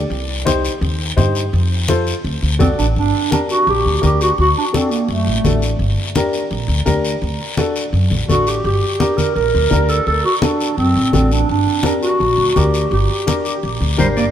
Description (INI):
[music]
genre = latin, cumbia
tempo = 169 BPM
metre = 4/4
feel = straight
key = G harmonic minor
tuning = A4 = 441 Hz
[part]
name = upright bass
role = bass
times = 0.0-14.3 s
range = G1 to G2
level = -18 LUFS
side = equal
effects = none
[part]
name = congas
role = percussion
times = 0.1-14.2 s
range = none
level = -21 LUFS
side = left 2 dB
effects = none
[part]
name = guiro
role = percussion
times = 0.1-14.3 s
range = none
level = -27 LUFS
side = left 4 dB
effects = none
[part]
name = dark upright piano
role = accompaniment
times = 0.4-14.2 s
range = D4 to D5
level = -22 LUFS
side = left 2 dB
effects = none
[part]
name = breathy clarinet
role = second line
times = 2.6-5.6, 8.3-14.2 s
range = G3 to Bb4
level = -17 LUFS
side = right 2 dB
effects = none
[part]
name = bright clarinet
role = melody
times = 14.0-14.2 s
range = C5 to D5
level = -26 LUFS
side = left 2 dB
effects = slapback echo
[sound]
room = moderate plate reverb, RT60 3.4 s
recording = heard from further back in the room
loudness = -14 LUFS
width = side -10 dB against mid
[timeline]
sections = 0.0-3.0 A section; 3.0-14.3 B section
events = clarinet solo 3.0-14.3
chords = 0.1 Cm; 1.5 F; 2.2 D7; 3.0 Gm; 4.4 D; 5.8 Gm; 7.2 D; 8.7 Gm; 10.1 D7; 11.5 Gm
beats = | 0.11 0.47 0.82 1.18 | 1.53 1.89 2.25 2.60 | 2.96 3.31 3.67 4.02 | 4.38 4.74 5.09 5.45 | 5.80 6.16 6.51 6.87 | 7.23 7.58 7.94 8.29 | 8.65 9.01 9.36 9.72 | 10.07 10.43 10.79 11.14 | 11.50 11.85 12.21 12.57 | 12.92 13.28 13.63 13.99